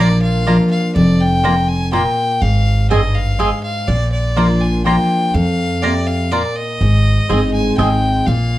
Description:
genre	bluegrass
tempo	123 BPM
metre	3/4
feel	straight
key	Bb mixolydian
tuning	A4 = 440 Hz
part	clear fiddle	melody	0.0-8.6 s	D5 to Ab5	-20 LUFS	left 1 dB	plate reverb
part	picked steel-string acoustic guitar	accompaniment	0.0-8.6 s	F2 to Ab4	-17 LUFS	left 1 dB	none
part	mandolin	stabs	0.0-7.9 s	Bb3 to Bb5	-19 LUFS	right 2 dB	none
part	upright bass	bass	0.0-8.6 s	F1 to F2	-17 LUFS	right 1 dB	none
room	moderate studio reverb, RT60 0.7 s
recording	worn, warbling old tape, cassette tape, warbly pitch drift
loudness	-13 LUFS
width	side -15 dB against mid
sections	0.0-8.6 A section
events	none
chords	0.0 Bb; 2.4 Ab; 3.9 Bb; 6.8 Ab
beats	0.47 | 0.96 1.45 1.93 | 2.42 2.91 3.40 | 3.88 4.37 4.86 | 5.35 5.83 6.32 | 6.81 7.30 7.79 | 8.28

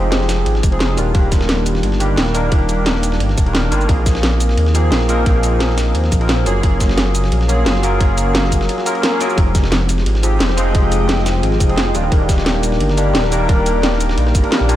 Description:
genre	liquid drum and bass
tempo	175 BPM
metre	4/4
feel	straight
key	unclear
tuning	A4 = 440 Hz
part	barky tine electric piano	accompaniment	0.0-14.8 s	Eb3 to Bb4	-19 LUFS	equal	analog chorus, analog delay
part	dark detuned saw bass	bass	0.0-14.8 s	Eb1 to Eb2	-17 LUFS	equal	tube saturation
part	drum and bass drum kit	drums	0.1-14.8 s	cabasa, hi-hat, rim click, snare drum	-21 LUFS	equal	none
part	dusty soul sampler-style drum kit	drums	0.1-14.8 s	hi-hat, ride cymbal, snare drum	-27 LUFS	equal	high-pass filter on cymbals, high-pass filter on snare, high-pass filter on hats, high-pass filter on room
part	electronic kick drum	drums	0.6-14.4 s	none	-15 LUFS	equal	none
part	ethereal airy pad	sustained chords	10.1-14.8 s	Ab3 to Bb5	-24 LUFS	left 2 dB	ensemble chorus, built-in reverb, phaser
room	light reverb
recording	none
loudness	-13 LUFS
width	side -13 dB against mid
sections	0.0-14.8 A section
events	none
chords	0.0 Fm9; 1.0 Ebmaj7; 3.9 Bb9sus4; 6.5 Gbmaj9; 9.4 Fm9; 11.9 Ebmaj7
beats	0.12 0.46 0.81 | 1.15 1.49 1.83 2.18 | 2.52 2.86 3.21 3.55 | 3.89 4.23 4.58 4.92 | 5.26 5.61 5.95 6.29 | 6.63 6.98 7.32 7.66 | 8.01 8.35 8.69 9.03 | 9.38 9.72 10.06 10.40 | 10.75 11.09 11.43 11.78 | 12.12 12.46 12.80 13.15 | 13.49 13.83 14.18 14.52

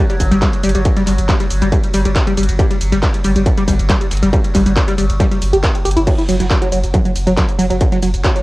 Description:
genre	driving peak-time techno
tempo	138 BPM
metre	4/4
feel	straight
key	unclear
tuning	A4 = 439 Hz
part	tight sequenced synth	riff	0.0-8.4 s	F#3 to G4	-17 LUFS	equal	chorus, tube saturation, sidechain pumping, cassette tape, tape echo
part	overtone-sweeping drone	drone	0.0-6.1 s	F#3	-29 LUFS	right 1 dB	chorus, built-in reverb, phaser, sidechain pumping, cassette tape
part	techno drum kit	drums	0.1-8.4 s	crash cymbal, handclaps, hi-hat, ride cymbal, shaker	-24 LUFS	equal	overdrive, small room ambience, cassette tape
part	saturated sub bass	bass	0.2-8.2 s	F#1 to G1	-17 LUFS	equal	overdrive, sidechain pumping, low-pass filter
part	dusty soul sampler-style drum kit	drums	0.2-8.4 s	hi-hat, snare drum	-36 LUFS	equal	none
part	electronic kick drum	drums	0.2-8.3 s	none	-15 LUFS	equal	distortion, overdrive, small room ambience, cassette tape
room	light reverb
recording	home recording on cassette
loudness	-12 LUFS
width	side -19 dB against mid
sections	0.0-6.1 A section; 6.1-8.4 A section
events	drop 0.0-6.1, 6.1-8.4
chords	none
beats	0.42 | 0.85 1.29 1.72 2.16 | 2.59 3.03 3.46 3.90 | 4.33 4.76 5.20 5.63 | 6.07 6.50 6.94 7.37 | 7.81 8.24

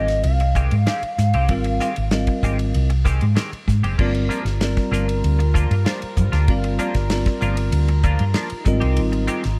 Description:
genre	electric jazz fusion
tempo	96 BPM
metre	4/4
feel	straight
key	unclear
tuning	A4 = 440 Hz
part	hollow square lead	melody	0.0-3.3 s	Eb5 to F5	-28 LUFS	equal	chorus, tape echo
part	bell-like tine electric piano	accompaniment	0.0-9.4 s	G3 to F5	-28 LUFS	equal	none
part	clean electric guitar	stabs	0.0-9.5 s	Eb3 to G4	-32 LUFS	equal	analog chorus
part	hollow-body short-scale fingered electric bass	bass	0.0-9.6 s	Gb1 to Ab2	-21 LUFS	equal	none
part	damped 70s drum kit	drums	0.1-9.6 s	crash cymbal, hi-hat, kick drum, ride cymbal, snare drum	-27 LUFS	equal	none
part	dark studio string section	sustained chords	4.0-9.6 s	G3 to Bb4	-34 LUFS	equal	none
room	little or no reverb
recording	dark, warm production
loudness	-20 LUFS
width	mono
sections	0.0-4.0 A section; 4.0-9.6 B section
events	none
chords	0.0 Fm9/Ab; 4.0 Gm7; 8.7 Fm9/Ab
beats	0.24 0.87 | 1.49 2.12 2.74 3.37 | 3.99 4.61 5.24 5.86 | 6.49 7.11 7.73 8.36 | 8.98

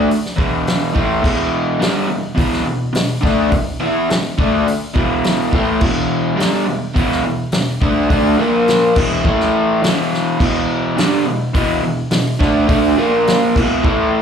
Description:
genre	garage rock duo or trio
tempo	105 BPM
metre	4/4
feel	straight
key	unclear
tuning	A4 = 441 Hz
part	crunchy overdriven guitar	riff	0.0-14.2 s	E2 to E4	-15 LUFS	equal	slapback echo
part	vintage drum kit	drums	0.1-14.0 s	crash cymbal, hi-hat, kick drum, snare drum	-20 LUFS	equal	none
room	small room ambience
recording	live gig heard through the venue's PA, club reverb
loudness	-14 LUFS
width	side -7 dB against mid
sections	0.0-14.2 A section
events	none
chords	0.0 E5; 8.4 A#5; 9.0 E5; 9.2 A5; 9.8 E5; 13.0 A#5; 13.6 E5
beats	0.09 0.66 | 1.23 1.80 2.38 2.95 | 3.52 4.09 4.66 5.23 | 5.81 6.38 6.95 7.53 | 8.10 8.67 9.25 9.82 | 10.39 10.97 11.54 12.12 | 12.69 13.27 13.85

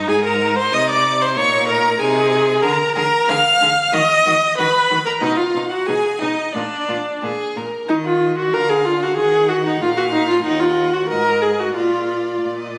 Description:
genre	quick classical-period movement for string quartet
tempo	93 BPM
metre	2/4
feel	straight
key	Eb minor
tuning	A4 = 442 Hz
part	rich violin	melody	0.0-12.8 s	Cb5 to F6	-25 LUFS	equal	none
part	clear violin	second line	0.0-12.7 s	D#4 to Gb5	-30 LUFS	equal	none
part	clear viola	accompaniment	0.0-12.4 s	D4 to F5	-19 LUFS	equal	none
part	rich cello	bass	0.0-12.8 s	Eb2 to Eb3	-28 LUFS	equal	none
room	moderate scoring stage reverb, RT60 1.6 s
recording	recorded on a phone in the room, studio ambience, compression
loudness	-17 LUFS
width	mono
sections	0.0-7.9 A section; 7.9-12.8 B section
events	none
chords	0.1 Ab; 1.4 Eb5/Bb; 2.0 Ab/C; 2.6 Bb/D; 3.9 Ebm; 5.2 B6; 6.5 Bb; 7.9 Ebm; 8.5 Ddim; 9.2 Ebm; 9.8 Bb5; 10.4 Ebm; 11.1 Abm; 11.8 Bb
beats	| 0.08 0.72 | 1.36 1.99 | 2.63 3.28 | 3.93 4.57 | 5.21 5.87 | 6.54 7.22 | 7.89 8.53 | 9.17 9.81 | 10.45 11.09 | 11.75 12.41

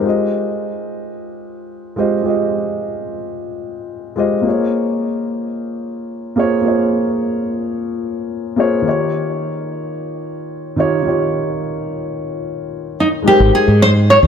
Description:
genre	sunset chillout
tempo	109 BPM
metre	4/4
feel	straight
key	Bb dorian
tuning	A4 = 440 Hz
part	dark grand piano	accompaniment	0.0-14.3 s	Eb3 to Eb5	-18 LUFS	moving between left 6 dB and right 3 dB	auto-pan, ping-pong delay
part	nylon-string guitar	melody	13.0-14.2 s	Eb4 to Db5	-11 LUFS	equal	none
part	mellow fretless electric bass	bass	13.4-14.3 s	Ab1 to Ab2	-12 LUFS	equal	none
room	moderate plate reverb, RT60 2.8 s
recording	none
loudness	-15 LUFS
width	side -7 dB against mid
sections	0.0-13.3 A section; 13.3-14.3 B section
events	none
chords	0.0 Fm7/Ab; 4.5 Bbm7; 8.9 Eb7; 13.3 Abmaj7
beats	| 0.05 0.60 1.15 1.70 | 2.25 2.80 3.35 3.90 | 4.45 5.00 5.55 6.10 | 6.65 7.20 7.75 8.30 | 8.85 9.40 9.96 10.51 | 11.06 11.61 12.16 12.71 | 13.26 13.81

